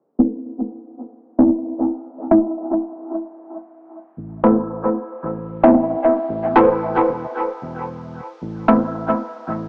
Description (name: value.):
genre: dub techno.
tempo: 113 BPM.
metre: 4/4.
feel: straight.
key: A minor.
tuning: A4 = 440 Hz.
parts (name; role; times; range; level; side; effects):
filtered dub chord stab; stabs; 0.2-8.8 s; A3 to E4; -19 LUFS; equal; phaser, cassette tape, dub echo.
round analog bass; bass; 4.2-9.7 s; E1 to A1; -32 LUFS; equal; none.
room: wet spring reverb, RT60 2.6 s.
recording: home recording on cassette, low-pass filter, small speaker sound.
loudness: -19 LUFS.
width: mono.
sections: 0.0-8.4 A section; 8.4-9.7 B section.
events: filter sweep on synth stab 0.0-8.4; filter sweep 0.0-8.4.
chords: 0.0 A5; 8.4 N.C..